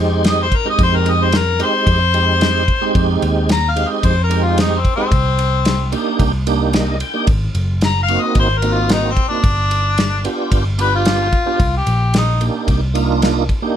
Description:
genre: straight-eighth soul blues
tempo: 111 BPM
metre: 4/4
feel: straight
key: C minor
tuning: A4 = 439 Hz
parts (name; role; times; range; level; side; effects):
- tonewheel organ; accompaniment; 0.0-13.8 s; Ab3 to G5; -20 LUFS; right 5 dB; overdrive, chorus vibrato, slow rotary speaker
- vintage muted picked electric bass; bass; 0.0-13.5 s; Gb1 to F2; -18 LUFS; equal; none
- warm soul drum kit; drums; 0.2-13.6 s; kick drum, ride cymbal, snare drum; -19 LUFS; equal; none
- mellow harmonica; melody; 0.3-12.4 s; C4 to Bb5; -18 LUFS; left 4 dB; overdrive
room: light reverb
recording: none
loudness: -13 LUFS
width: side -10 dB against mid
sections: 0.0-13.8 A section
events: harmonica solo 0.0-13.8; tonewheel organ fill 6.5-7.3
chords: 0.0 Fm7; 5.1 Cm7; 7.3 Ab7; 9.4 G7; 11.6 Cm7

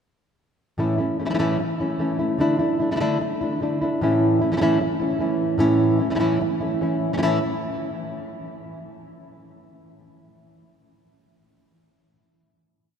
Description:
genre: flamenco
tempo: 150 BPM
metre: 4/4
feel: straight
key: A major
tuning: A4 = 440 Hz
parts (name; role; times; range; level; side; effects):
- nylon-string guitar; solo; 0.8-7.4 s; A2 to E4; -20 LUFS; equal; none
room: wet cathedral reverb, RT60 5.3 s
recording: in a vast, echoing space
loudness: -20 LUFS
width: side -7 dB against mid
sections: 0.8-7.2 groove; 7.2-8.8 final chord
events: none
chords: 0.8 A; 2.4 Dsus2; 4.0 A

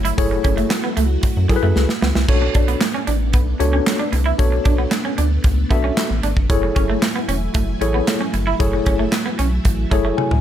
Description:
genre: early-eighties boogie funk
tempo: 114 BPM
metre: 4/4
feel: straight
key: F# minor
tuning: A4 = 440 Hz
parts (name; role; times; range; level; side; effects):
- string machine, full ensemble; sustained chords; 0.0-10.4 s; F#3 to G#5; -27 LUFS; equal; ensemble chorus
- electric guitar at the edge of break-up; riff; 0.0-10.1 s; F#3 to E4; -25 LUFS; right 5 dB; lush chorus
- rubbery square bass; bass; 0.0-10.4 s; E1 to F#2; -20 LUFS; equal; none
- modern studio drum kit; drums; 0.1-10.4 s; crash cymbal, handclaps, hi-hat, kick drum, snare drum, toms; -20 LUFS; equal; gated reverb
- mellow tine electric piano; accompaniment; 0.2-10.4 s; D4 to G#5; -22 LUFS; left 4 dB; fast stereo tremolo
room: little or no reverb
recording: none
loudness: -16 LUFS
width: side -10 dB against mid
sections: 0.0-10.4 A section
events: drum fill 1.8-2.3, 10.2; tine electric piano fill 9.9-10.4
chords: 0.0 F#m9; 2.3 Bm7; 6.5 F#m9

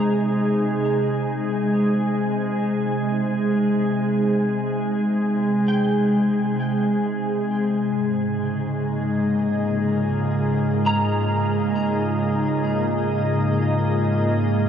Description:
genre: ambient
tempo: free time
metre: none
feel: none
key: Ab major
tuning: A4 = 439 Hz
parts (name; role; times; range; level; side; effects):
- glassy FM pad; sustained chords; 0.0-14.7 s; Ab2 to Ab4; -20 LUFS; equal; ensemble chorus, built-in reverb
- clean electric guitar; arpeggios; 0.0-12.1 s; G5 to Bb5; -31 LUFS; right 1 dB; ensemble chorus, tape echo
- organ-like drone; drone; 8.4-14.7 s; Ab3 to Eb4; -27 LUFS; right 1 dB; ensemble chorus, built-in reverb
room: wet huge ambient reverb, RT60 8.4 s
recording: dark, warm production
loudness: -19 LUFS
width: side -8 dB against mid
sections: 0.0-14.7 A section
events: fade-in on clean electric guitar 0.0-14.7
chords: 0.0 Abmaj7; 7.9 Bbm7/Ab

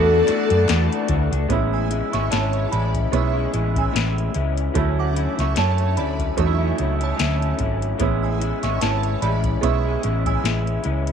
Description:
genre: indie pop, bedroom pop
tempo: 74 BPM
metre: 4/4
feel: swing 55% on 16ths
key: A major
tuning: A4 = 438 Hz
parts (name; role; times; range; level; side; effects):
- hollow clarinet-like synth lead; melody; 0.0-1.1 s; A4; -19 LUFS; left 4 dB; ensemble chorus, slapback echo
- shimmering bell with halo; second line; 0.0-10.4 s; C#5 to E6; -29 LUFS; right 12 dB; ensemble chorus, wide subtle chorus, slapback echo
- bright upright piano; accompaniment; 0.0-11.1 s; F#3 to F#4; -26 LUFS; right 14 dB; cassette tape
- electric guitar through a small old amp; accompaniment; 0.0-11.1 s; A2 to F#4; -26 LUFS; left 14 dB; analog chorus, vibrato effect
- string machine, violas; sustained chords; 0.0-1.5 s; F#4 to A5; -30 LUFS; right 2 dB; ensemble chorus
- hollow-body short-scale fingered electric bass; bass; 0.0-11.1 s; G#1 to F#2; -22 LUFS; equal; tube saturation
- soft vintage rhythm box; drums; 0.3-11.1 s; hi-hat, kick drum, snare drum; -26 LUFS; left 2 dB; none
- group handclap; percussion; 0.3-0.9 s; none; -35 LUFS; left 13 dB; none
room: light reverb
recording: 1960s-style stereo with parts hard left and right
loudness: -18 LUFS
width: side -7 dB against mid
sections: 0.0-1.5 A section; 1.5-11.1 B section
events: none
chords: 0.0 E9sus4; 1.5 Amaj7; 4.8 Dmaj9; 8.0 Amaj7

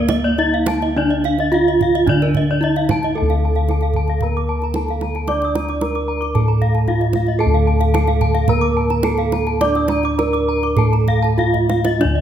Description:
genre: Balinese gamelan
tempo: 96-113 BPM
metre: 4/4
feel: straight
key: D pelog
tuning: A4 = 440 Hz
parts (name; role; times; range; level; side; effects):
- gamelan-type bronze metallophone; melody; 0.0-12.2 s; Bb3 to D5; -20 LUFS; right 2 dB; none
- gamelan-type bronze metallophone; accompaniment; 0.0-12.2 s; D3 to D4; -26 LUFS; right 5 dB; none
- gamelan-type bronze metallophone; arpeggios; 0.0-12.2 s; Bb4 to Eb6+35c; -27 LUFS; right 7 dB; none
- gamelan-type bossed gongs; bass; 0.0-12.2 s; D2 to D5; -19 LUFS; left 1 dB; none
- kendang; percussion; 0.1-12.2 s; none; -25 LUFS; right 4 dB; none
- gamelan-type bronze metallophone; arpeggios; 0.2-12.2 s; D5 to D6; -23 LUFS; left 5 dB; none
room: moderate recital hall reverb, RT60 1.7 s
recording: none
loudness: -15 LUFS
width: side -10 dB against mid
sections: 0.0-3.2 A section; 3.2-12.0 B section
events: drum fill 11.4-12.0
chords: none

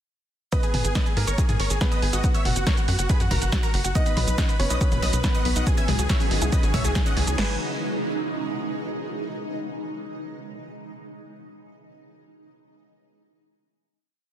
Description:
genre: uplifting trance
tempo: 140 BPM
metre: 4/4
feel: straight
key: G# minor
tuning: A4 = 440 Hz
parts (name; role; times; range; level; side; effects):
- big supersaw lead; melody; 0.5-7.5 s; F#4 to G#5; -30 LUFS; right 1 dB; vintage 12-bit sampler grit, sidechain pumping, tape echo
- warm grand piano; second line; 0.5-7.5 s; A#3 to D#5; -34 LUFS; right 2 dB; tape echo
- wide unison pluck; second line; 0.5-7.5 s; F#5 to G#6; -35 LUFS; right 1 dB; sidechain pumping, tape echo
- punchy analog drum machine; drums; 0.5-7.5 s; crash cymbal, kick drum, snare drum; -24 LUFS; equal; none
- punchy analog drum machine; drums; 0.5-7.4 s; hi-hat, shaker, snare drum, toms; -28 LUFS; right 1 dB; none
- tight sequencer bass; bass; 0.7-7.6 s; F#1 to G#2; -25 LUFS; equal; sidechain pumping
- wide unison pluck; arpeggios; 4.0-7.6 s; B2 to C#5; -34 LUFS; left 1 dB; sidechain pumping, tape echo
room: digital ambience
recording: dense, heavily limited modern master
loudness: -21 LUFS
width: side -11 dB against mid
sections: 0.5-7.4 drop; 7.4-9.1 final chord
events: drop 0.5-7.4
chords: 0.5 G#m; 2.2 F#; 4.0 B; 5.7 C#madd9; 7.4 G#m

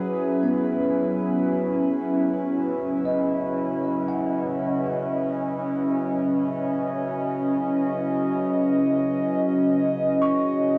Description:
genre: ambient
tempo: 58 BPM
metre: 4/4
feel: straight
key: unclear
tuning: A4 = 441 Hz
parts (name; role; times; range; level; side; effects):
- warbly tape-like pad; sustained chords; 0.0-10.8 s; C#3 to D#5; -25 LUFS; equal; chorus, built-in reverb, cassette tape
- bell-like tine electric piano; arpeggios; 0.0-10.8 s; B3 to C#6; -33 LUFS; equal; subtle chorus, cassette tape, tape echo
- analog drone; drone; 0.5-10.8 s; F#3 to C#4; -35 LUFS; equal; chorus, cassette tape
room: wet booth ambience, RT60 0.2 s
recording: home recording on cassette, small room ambience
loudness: -24 LUFS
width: mono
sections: 0.0-10.8 A section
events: fade-in on synth drone 0.0-10.8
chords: 0.0 F#7sus4; 2.5 C#m7

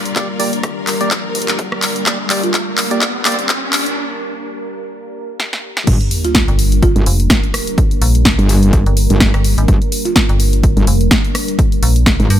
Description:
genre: bass house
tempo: 126 BPM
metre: 4/4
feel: swing 56% on 16ths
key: G minor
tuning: A4 = 440 Hz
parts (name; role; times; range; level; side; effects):
- deep dark ambient pad; sustained chords; 0.0-12.4 s; G3 to Bb4; -22 LUFS; left 1 dB; chorus, built-in reverb, sidechain pumping
- riser and sub drop; sound effects; 0.7-7.8 s; none; -25 LUFS; equal; none
- clear symphonic string section; texture; 0.0-4.0 s; G3 to D5; -27 LUFS; left 4 dB; sidechain pumping
- house drum kit; drums; 0.1-12.4 s; crash cymbal, handclaps, hi-hat, rim click, snare drum; -17 LUFS; equal; small room reverb
- percussive organ stab; stabs; 0.2-3.4 s; Bb3 to D5; -23 LUFS; right 1 dB; analog chorus, sidechain pumping, ping-pong delay
- electronic kick drum; drums; 0.2-12.2 s; none; -15 LUFS; equal; high-pass filter on kick, small room reverb
- buzzing marimba with soft mallets; melody; 2.4-2.6, 6.2-10.2 s; F4; -23 LUFS; right 4 dB; ping-pong delay
- metallic wobble bass; bass; 5.9-12.3 s; G1 to Ab1; -13 LUFS; equal; distortion, chorus, tube saturation, sidechain pumping
- metallic FM bass; bass; 6.5-12.4 s; F1 to G2; -13 LUFS; equal; tube saturation, sidechain pumping
room: digital ambience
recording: high-pass filter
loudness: -12 LUFS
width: side -11 dB against mid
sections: 0.0-5.9 A section; 5.9-12.4 B section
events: build-up 0.0-5.9; drum fill 0.0-4.0, 5.4-5.9; riser 0.7-4.0; break 4.0-5.9; drop 5.9-12.4; impact 5.9-7.8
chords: 0.0 Gm

